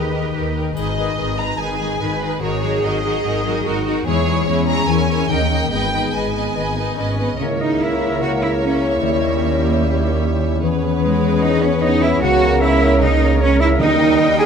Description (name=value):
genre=classical, dramatic, fast romantic movement for symphony orchestra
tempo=148 BPM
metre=4/4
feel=straight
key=G# minor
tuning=A4 = 440 Hz
part: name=warm symphonic violin section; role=melody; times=0.0-14.5 s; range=B4 to A#5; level=-26 LUFS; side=left 1 dB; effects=none
part: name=rich symphonic violin section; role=second line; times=0.0-14.5 s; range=F#4 to D#5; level=-27 LUFS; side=equal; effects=none
part: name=rich symphonic viola section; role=accompaniment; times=0.0-14.5 s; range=D#3 to A#4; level=-28 LUFS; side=left 1 dB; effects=none
part: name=concert harp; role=arpeggios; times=0.0-14.5 s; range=G#2 to C#5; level=-22 LUFS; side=left 9 dB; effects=none
part: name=rich symphonic cello section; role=bass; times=0.0-14.5 s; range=G#3 to B4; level=-22 LUFS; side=right 3 dB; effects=none
part: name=rich symphonic double bass section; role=bass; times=0.0-14.5 s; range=G#1 to E2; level=-22 LUFS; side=right 3 dB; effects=none
part: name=triangle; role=percussion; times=0.8-1.6 s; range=none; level=-45 LUFS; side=left 1 dB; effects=none
part: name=warm clarinet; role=second line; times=7.2-14.5 s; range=G#4 to G#5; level=-24 LUFS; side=right 1 dB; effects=none
part: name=mellow hollow large flute ensemble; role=second line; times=7.4-14.5 s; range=C#5 to D#5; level=-26 LUFS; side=equal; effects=none
part: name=warm bassoon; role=accompaniment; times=7.4-14.5 s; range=G3 to B3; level=-26 LUFS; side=right 3 dB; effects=none
part: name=mellow French horn section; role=sustained chords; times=7.4-14.5 s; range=G3 to E4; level=-23 LUFS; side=left 4 dB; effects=none
part: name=timpani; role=percussion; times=13.8-14.3 s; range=D#3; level=-25 LUFS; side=right 2 dB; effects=none
room=light reverb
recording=close, detailed microphones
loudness=-15 LUFS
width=side -6 dB against mid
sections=0.0-7.4 A section; 7.4-14.5 B section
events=none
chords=0.0 D#; 0.8 G#m; 2.4 D#m/G#; 4.1 C#m/E; 4.9 A#m7b5/E; 5.3 D#; 5.7 G#m; 7.4 A#dim/C#; 9.0 D#7b9; 10.6 E6; 12.2 A#dim/C#; 13.8 D#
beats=0.35 | 0.77 1.19 1.60 2.01 | 2.43 2.85 3.25 3.66 | 4.07 4.48 4.88 5.30 | 5.72 6.14 6.57 6.99 | 7.41 7.81 8.22 8.62 | 9.02 9.42 9.82 10.22 | 10.62 11.02 11.42 11.82 | 12.22 12.62 13.01 13.41 | 13.80 14.19